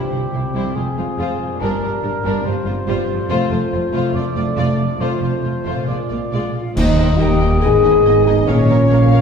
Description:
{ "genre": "cinematic, heroic adventure film score", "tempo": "140 BPM", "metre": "4/4", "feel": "straight", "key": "C mixolydian", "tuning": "A4 = 440 Hz", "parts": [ { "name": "warm symphonic violin section", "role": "melody", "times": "0.0-9.2 s", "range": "Bb4 to F5", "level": "-30 LUFS", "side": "left 4 dB", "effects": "none" }, { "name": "warm symphonic violin section", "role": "second line", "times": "0.0-9.2 s", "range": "D4 to Ab5", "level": "-29 LUFS", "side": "left 2 dB", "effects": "none" }, { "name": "warm chamber viola section", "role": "accompaniment", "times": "0.0-9.2 s", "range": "G3 to Bb4", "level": "-26 LUFS", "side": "right 2 dB", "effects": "none" }, { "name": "mellow French horn section", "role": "sustained chords", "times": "0.0-9.2 s", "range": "E3 to Ab4", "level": "-20 LUFS", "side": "left 2 dB", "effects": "none" }, { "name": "concert harp", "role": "arpeggios", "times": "0.0-9.2 s", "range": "F2 to A4", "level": "-25 LUFS", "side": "left 4 dB", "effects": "none" }, { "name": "mellow trumpet", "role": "stabs", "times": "0.0-9.2 s", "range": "G4 to Eb5", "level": "-25 LUFS", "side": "equal", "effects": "none" }, { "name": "dark studio double bass section", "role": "bass", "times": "0.1-9.2 s", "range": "F1 to Eb2", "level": "-22 LUFS", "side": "right 2 dB", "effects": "none" }, { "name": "warm studio cello section", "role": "bass", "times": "0.1-9.2 s", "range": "C2 to Bb2", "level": "-23 LUFS", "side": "right 2 dB", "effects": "none" }, { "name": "bright silver concert flute", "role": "second line", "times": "6.6-9.2 s", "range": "Db5 to Ab5", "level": "-33 LUFS", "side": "left 1 dB", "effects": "none" }, { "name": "bright trombone section", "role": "sustained chords", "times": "6.8-9.2 s", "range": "Eb3 to Eb4", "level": "-27 LUFS", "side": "right 2 dB", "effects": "none" }, { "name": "clash cymbals and concert bass drum", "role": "percussion", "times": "6.8-7.6 s", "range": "none", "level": "-23 LUFS", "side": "equal", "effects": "none" }, { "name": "timpani", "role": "percussion", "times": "6.8-7.4 s", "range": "Eb3", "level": "-25 LUFS", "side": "equal", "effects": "none" } ], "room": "wet scoring stage reverb, RT60 1.7 s", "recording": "heard from further back in the room", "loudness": "-15 LUFS", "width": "side -6 dB against mid", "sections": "0.0-6.8 A section; 6.8-9.2 B section", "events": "band accent 6.8-7.2", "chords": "0.0 C; 0.8 Fm; 1.6 Gm; 2.5 Csus4/G; 3.3 F; 5.9 Bb7; 6.8 Eb; 7.6 Abm; 8.5 Bbm", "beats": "0.35 0.77 1.20 | 1.63 2.05 2.46 2.89 | 3.31 3.73 4.15 4.58 | 5.01 5.44 5.89 6.33 | 6.77 7.20 7.63 8.06 | 8.48 8.91" }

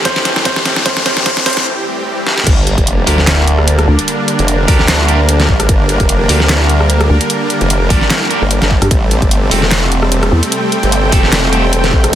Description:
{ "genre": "heavy wobble dubstep", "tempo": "149 BPM", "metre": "4/4", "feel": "swing 55% on 16ths, half-time", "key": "G dorian", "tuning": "A4 = 440 Hz", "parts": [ { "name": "clear grand piano", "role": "melody", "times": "0.0-1.6 s", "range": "C5", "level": "-20 LUFS", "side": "right 2 dB", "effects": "digital delay" }, { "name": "supersaw chords", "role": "sustained chords", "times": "0.0-12.2 s", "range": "A2 to G4", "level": "-19 LUFS", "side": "right 1 dB", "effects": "sidechain pumping" }, { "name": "riser, swell and sub drop", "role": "sound effects", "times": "0.0-4.1 s", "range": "none", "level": "-20 LUFS", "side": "left 2 dB", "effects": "none" }, { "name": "rich symphonic string section", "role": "texture", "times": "0.0-12.2 s", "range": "C4 to G5", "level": "-20 LUFS", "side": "equal", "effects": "sidechain pumping" }, { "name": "dubstep drum kit", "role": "drums", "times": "0.1-12.2 s", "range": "crash cymbal, handclaps, hi-hat, rim click, snare drum", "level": "-15 LUFS", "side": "equal", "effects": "overdrive" }, { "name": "electronic kick drum", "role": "drums", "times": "0.1-12.0 s", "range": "none", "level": "-13 LUFS", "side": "equal", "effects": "none" }, { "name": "formant-sweep wobble bass", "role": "bass", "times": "2.5-12.1 s", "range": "E1 to D2", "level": "-13 LUFS", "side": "equal", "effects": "chorus, overdrive" }, { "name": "distorted electric guitar", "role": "stabs", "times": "3.1-11.6 s", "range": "C4 to Bb4", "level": "-20 LUFS", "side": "right 2 dB", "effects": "distortion, digital delay" }, { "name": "vowel-sweep wobble bass", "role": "bass", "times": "3.9-4.0, 7.1-10.4 s", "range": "A1 to G2", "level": "-11 LUFS", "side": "equal", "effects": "chorus, overdrive" } ], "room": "light reverb", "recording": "dense, heavily limited modern master, high-pass filter", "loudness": "-10 LUFS", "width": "side -11 dB against mid", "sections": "0.0-2.5 A section; 2.5-12.2 B section", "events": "build-up 0.0-2.5; drum fill 0.0-1.7, 2.3; riser 0.0-1.7; break 1.7-2.5; swell 1.7-2.5; drop 2.5-12.2; impact 2.5-4.1", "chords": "0.0 Am7; 2.5 Gm; 8.9 Am7", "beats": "0.05 0.45 | 0.86 1.26 1.66 2.06 | 2.47 2.87 3.27 3.67 | 4.08 4.48 4.88 5.29 | 5.69 6.09 6.49 6.90 | 7.30 7.70 8.11 8.51 | 8.91 9.31 9.71 10.12 | 10.52 10.92 11.33 11.73 | 12.13" }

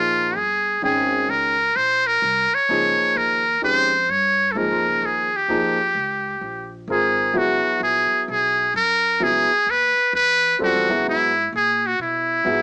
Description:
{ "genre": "jazz", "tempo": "129 BPM", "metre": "4/4", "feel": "swing 66% on 8ths", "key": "unclear", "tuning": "A4 = 440 Hz", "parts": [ { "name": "trumpet with metal mute", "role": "melody", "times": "0.0-12.6 s", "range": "Fb4 to Db5", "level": "-17 LUFS", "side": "equal", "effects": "none" }, { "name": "warm baby grand piano", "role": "accompaniment", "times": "0.0-12.6 s", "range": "Eb3 to G5", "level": "-24 LUFS", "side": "equal", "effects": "none" }, { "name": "upright bass", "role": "bass", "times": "0.0-12.6 s", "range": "G1 to Cb3", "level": "-34 LUFS", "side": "equal", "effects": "none" } ], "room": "light reverb", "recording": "small speaker sound", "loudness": "-17 LUFS", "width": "side -28 dB against mid", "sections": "0.0-12.6 A section", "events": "none", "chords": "0.0 Bbm11; 7.3 Dbm11", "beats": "0.36 0.83 1.29 | 1.76 2.23 2.69 3.16 | 3.62 4.09 4.56 5.02 | 5.49 5.95 6.42 6.88 | 7.35 7.81 8.28 8.74 | 9.21 9.67 10.14 10.60 | 11.07 11.53 11.99 12.46" }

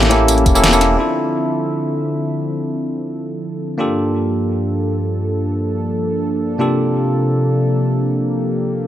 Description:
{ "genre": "liquid drum and bass", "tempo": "free time", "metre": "none", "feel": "none", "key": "D minor", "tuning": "A4 = 438 Hz", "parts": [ { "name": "bell-like tine electric piano", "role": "accompaniment", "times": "0.0-8.9 s", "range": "C3 to A4", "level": "-19 LUFS", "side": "equal", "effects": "dub echo" }, { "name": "warm analog pad", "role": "sustained chords", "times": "0.0-8.9 s", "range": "G2 to E5", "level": "-19 LUFS", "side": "equal", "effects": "chorus, sidechain pumping" }, { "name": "smooth gliding synth bass", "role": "bass", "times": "0.0-1.0 s", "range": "E1 to A1", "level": "-17 LUFS", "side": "equal", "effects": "tube saturation" }, { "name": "pop drum kit", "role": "drums", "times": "0.0-0.9 s", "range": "hi-hat, snare drum, tambourine", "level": "-17 LUFS", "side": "equal", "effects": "overdrive, low-pass filter on hats, low-pass filter on perc, low-pass filter on snare, low-pass filter on room" }, { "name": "electronic kick drum", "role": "drums", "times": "0.5 s", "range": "none", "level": "-15 LUFS", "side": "equal", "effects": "overdrive" } ], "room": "moderate plate reverb, RT60 2.1 s", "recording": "none", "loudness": "-15 LUFS", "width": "side -12 dB against mid", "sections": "1.0-8.9 A section", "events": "kick drops out 0.6-1.0; band accent 0.6", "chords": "0.0 A7b9; 1.0 Dm7; 3.8 Gm9; 6.6 C13sus4", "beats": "free time" }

